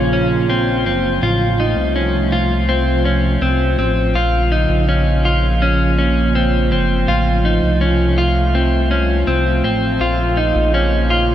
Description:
dream pop; 82 BPM; 4/4; straight; Bb harmonic minor; A4 = 440 Hz
warbly tape-like pad; sustained chords; 0.0-11.3 s; Db3 to F4; -19 LUFS; right 1 dB; chorus, built-in reverb
clean electric guitar; arpeggios; 0.0-11.3 s; C4 to F4; -18 LUFS; left 1 dB; wide subtle chorus, analog delay
chorused synth bass; bass; 0.0-11.3 s; Gb1 to C2; -18 LUFS; equal
moderate huge ambient reverb, RT60 8.2 s; dreamy mix soaked in reverb; -14 LUFS; side -11 dB against mid
0.0-11.3 A section
0.0 Bbm; 1.2 F/A; 4.2 Bbm; 7.1 F/A; 10.0 Bbm
0.49 | 1.23 1.96 2.69 3.42 | 4.15 4.88 5.62 6.35 | 7.08 7.81 8.54 9.27 | 10.01 10.74

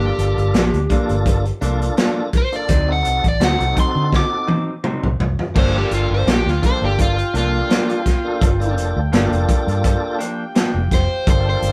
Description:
straight-eighth soul blues; 84 BPM; 4/4; swing 54% on 16ths; G minor; A4 = 440 Hz
overdriven semi-hollow guitar; melody; 0.0-11.7 s; F4 to D6; -24 LUFS; equal
tonewheel organ; accompaniment; 0.0-11.7 s; Bb3 to A4; -27 LUFS; equal; chorus vibrato, fast rotary speaker
electric guitar through a small old amp; stabs; 0.0-10.8 s; G2 to Eb4; -28 LUFS; equal
vintage muted fingered electric bass; bass; 0.0-11.7 s; F1 to D3; -22 LUFS; equal
crunchy breakbeat drum kit; drums; 0.2-11.7 s; crash cymbal, hi-hat, kick drum, snare drum, toms; -21 LUFS; equal
mellow horn section; sustained chords; 5.5-11.7 s; G4 to G5; -34 LUFS; equal
moderate studio reverb, RT60 0.5 s; band playing live in one room; -18 LUFS; mono
0.0-5.6 A section; 5.6-11.7 A section
drum fill 4.1-5.6
0.0 Gm7; 2.7 D7b9; 5.6 Gm7
0.55 1.26 1.98 | 2.69 3.41 4.12 4.84 | 5.55 6.27 6.98 7.70 | 8.41 9.12 9.84 10.55 | 11.26

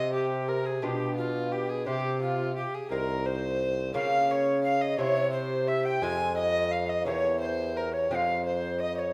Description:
classical, baroque-style sonata movement with continuo; 58 BPM (dotted quarters); 6/8; straight; A4 = 440 Hz
alto recorder; melody; 0.0-9.1 s; F4 to Ab5; -34 LUFS; equal
warm violin; second line; 0.0-9.1 s; F4 to Ab5; -34 LUFS; equal
lute; accompaniment; 0.0-9.1 s; E2 to G4; -37 LUFS; equal
mellow bassoon; bass; 0.0-9.1 s; C2 to Db3; -33 LUFS; equal
wet recital hall reverb, RT60 1.4 s; -28 LUFS; mono
0.0-9.1 A section
0.0 C5; 0.8 G7b9/B; 1.9 Cm; 3.9 Bbm/Db; 5.0 C; 6.0 Fm; 7.1 Edim; 8.1 Fm
0.82 | 1.86 2.90 | 3.94 4.98 | 6.02 7.06 | 8.10

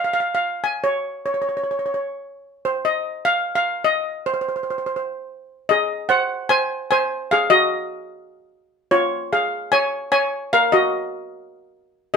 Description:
calypso; 148 BPM; 4/4; swing 53% on 16ths; A4 = 441 Hz
steel pan; solo; 0.0-12.2 s; F4 to Ab5; -18 LUFS; equal
moderate studio reverb, RT60 0.7 s; minimal, uncompressed stereo recording; -18 LUFS; side -5 dB against mid
0.0-5.7 A section; 5.7-12.2 B section
0.0 N.C.; 5.7 Ab; 8.9 Db; 10.5 N.C.
0.02 0.43 | 0.83 1.24 1.64 2.05 | 2.46 2.86 3.27 3.67 | 4.08 4.48 4.89 5.29 | 5.70 6.10 6.50 6.91 | 7.31 7.71 8.12 8.52 | 8.93 9.33 9.73 10.13 | 10.54 10.94 11.34 11.75 | 12.15

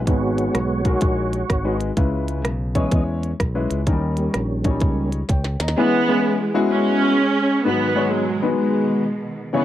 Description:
uptempo gospel; 127 BPM; 4/4; swing 65% on 8ths; G# minor; A4 = 440 Hz
fingered electric bass; bass; 0.0-5.7 s; G#1 to E2; -24 LUFS; equal
warm upright piano; accompaniment; 0.1-9.6 s; G#2 to A#5; -22 LUFS; left 4 dB
tonewheel organ; sustained chords; 0.1-5.1 s; E3 to D#5; -23 LUFS; right 2 dB; slow rotary speaker, chorus vibrato
minimal click drum kit; drums; 0.1-5.8 s; hi-hat, kick drum, rim click, snare drum; -21 LUFS; equal
warm symphonic string section; melody; 5.8-9.6 s; B2 to C#4; -19 LUFS; right 3 dB
light reverb; dry, close 1970s-style studio recording; -18 LUFS; side -12 dB against mid
0.0-5.8 A section; 5.8-9.6 B section
tonewheel organ solo 0.0-5.8; drum fill 5.3-5.8
0.1 G#m7; 2.0 C#m7; 3.9 D#7; 5.8 E6; 7.7 G#m7
| 0.07 0.55 1.02 1.50 | 1.97 2.45 2.92 3.40 | 3.87 4.34 4.82 5.29 | 5.76 6.24 6.71 7.18 | 7.65 8.12 8.60 9.07 | 9.54

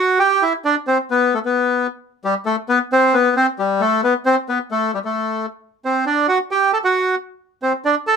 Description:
tango; 134 BPM; 4/4; rubato; G major; A4 = 440 Hz
bandoneon; solo; 0.0-8.2 s; G3 to A4; -15 LUFS; equal
light reverb; -16 LUFS; side -6 dB against mid
0.0-8.2 A section
0.21 0.66 | 1.11 1.56 2.01 2.46 | 2.90 3.35 3.80 4.25 | 4.70 5.15 5.60 6.05 | 6.50 6.95 7.40 7.85

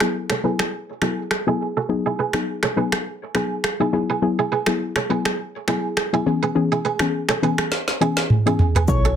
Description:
afrobeats; 103 BPM; 4/4; swing 55% on 16ths; A4 = 441 Hz
soft round pluck; accompaniment; 0.0-9.1 s; E3 to A4; -23 LUFS; left 5 dB; chorus, low-pass filter
afro-pop drum kit; drums; 0.0-9.0 s; finger snaps, kick drum, rim click, shaker, snare drum, toms; -21 LUFS; right 1 dB; soft clipping on snare
kora; riff; 0.3-9.1 s; E4 to C#5; -25 LUFS; right 6 dB; low-pass filter, tape echo
soft struck synth lead; melody; 8.9-9.1 s; C#5; -24 LUFS; equal; chorus
woody log drum bass; bass; 8.9-9.2 s; B1; -20 LUFS; equal
light reverb; dense, heavily limited modern master; -19 LUFS; side -9 dB against mid
0.0-8.9 A section
filter sweep 0.0-8.9; drum fill 7.7-8.9
0.0 B7sus4; 1.9 G#m7; 6.3 C#m7
0.14 0.73 1.31 | 1.89 2.47 3.06 3.64 | 4.22 4.80 5.39 5.97 | 6.55 7.13 7.72 8.30 | 8.88

